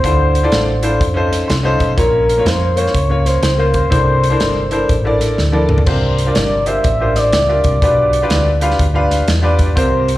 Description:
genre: uptempo gospel.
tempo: 123 BPM.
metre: 4/4.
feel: swing 63% on 8ths.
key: unclear.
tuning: A4 = 439 Hz.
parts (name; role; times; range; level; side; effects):
gliding portamento lead; melody; 0.0-10.2 s; Bb4 to E5; -18 LUFS; equal; chorus, slapback echo, tape echo.
clear baby grand piano; accompaniment; 0.0-10.2 s; Bb2 to C6; -17 LUFS; left 1 dB; slapback echo.
hollow-body short-scale fingered electric bass; bass; 0.0-10.2 s; G1 to F2; -17 LUFS; equal; none.
natural country drum kit; drums; 0.0-10.2 s; crash cymbal, hi-hat, kick drum, snare drum, toms; -19 LUFS; equal; none.
room: light reverb.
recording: live gig heard through the venue's PA, club reverb.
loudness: -12 LUFS.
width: side -16 dB against mid.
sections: 0.0-10.2 A section.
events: grand piano fill 1.3-2.0; drum fill 5.4-5.9.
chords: 0.0 Dm9; 1.0 F7b13; 2.0 Bbm; 3.9 C13; 5.9 C9sus4; 7.8 G7/B.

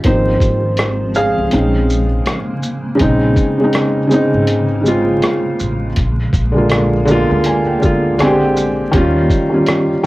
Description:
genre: lo-fi hip hop.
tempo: 81 BPM.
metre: 4/4.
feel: swing 58% on 16ths.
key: Bb dorian.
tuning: A4 = 439 Hz.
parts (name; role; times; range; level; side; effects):
felt-muted upright piano; accompaniment; 0.0-10.1 s; Db3 to Ab5; -14 LUFS; equal; cassette tape.
granular cloud pad; sustained chords; 0.0-10.1 s; Db3 to G4; -24 LUFS; equal; built-in reverb, cassette tape.
lo-fi sampler-style drum kit; drums; 0.0-9.9 s; hi-hat, kick drum, rim click, shaker; -18 LUFS; equal; vintage 12-bit sampler grit.
upright bass; bass; 0.1-9.3 s; Ab1 to Eb2; -19 LUFS; equal; none.
room: moderate small room ambience, RT60 0.5 s.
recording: home recording on cassette, vinyl crackle.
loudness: -12 LUFS.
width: side -18 dB against mid.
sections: 0.0-3.0 A section; 3.0-10.1 B section.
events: felt piano solo 0.0-3.0; kick muted 1.5-3.0.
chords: 0.0 Ab69; 1.5 Bbm11; 6.0 Bb7; 8.2 Bb13; 8.9 Eb9.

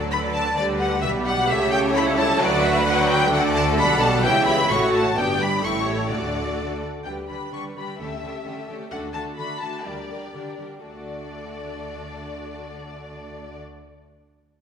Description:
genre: quick classical-period movement for string orchestra.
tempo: 118-132 BPM.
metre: 2/4.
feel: straight.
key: D major.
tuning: A4 = 440 Hz.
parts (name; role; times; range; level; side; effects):
rich studio violin section; second line; 0.0-13.6 s; F#4 to F#5; -28 LUFS; left 2 dB; none.
rich studio viola section; accompaniment; 0.0-13.6 s; E3 to A4; -26 LUFS; right 2 dB; none.
rich studio cello section; bass; 0.0-13.6 s; G2 to D3; -30 LUFS; right 2 dB; none.
rich studio double bass section; bass; 0.0-13.6 s; G1 to D2; -30 LUFS; right 2 dB; none.
rich studio violin section; melody; 0.1-13.6 s; C#5 to C#6; -25 LUFS; left 2 dB; none.
room: wet scoring stage reverb, RT60 1.6 s.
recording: recorded in a church or concert hall.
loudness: -19 LUFS.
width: side -7 dB against mid.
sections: 0.0-7.1 A section; 7.1-10.8 B section; 10.8-12.8 C section.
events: slowing down 8.4-10.8.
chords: 0.0 D; 0.6 G/D; 1.5 A7/C#; 2.4 D; 3.8 G/B; 4.3 C#dim; 4.7 F#m/A; 5.2 G; 5.6 A7; 6.1 D; 7.1 G/D; 8.0 A7/D; 8.9 D; 9.8 Gm/D; 10.8 D.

